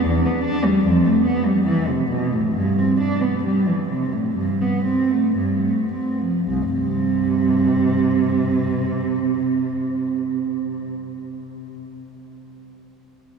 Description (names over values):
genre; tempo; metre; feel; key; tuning
classical, baroque-style suite movement for unaccompanied cello; 52-78 BPM; 4/4; rubato; C major; A4 = 440 Hz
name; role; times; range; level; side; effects
dark cello; solo; 0.0-10.9 s; C2 to D4; -18 LUFS; right 2 dB; none
room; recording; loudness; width
wet cathedral reverb, RT60 6.2 s; recorded in a church or concert hall; -18 LUFS; side -5 dB against mid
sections
0.0-6.5 A section; 6.5-10.8 B section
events
slowing down 0.0-6.5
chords
0.0 C/E (rootless); 0.8 Fmaj9#11; 2.5 C/G; 4.4 G7; 6.5 C5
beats
0.06 0.84 1.65 | 2.53 3.42 4.35 5.36 | 6.47 7.54 8.62 9.71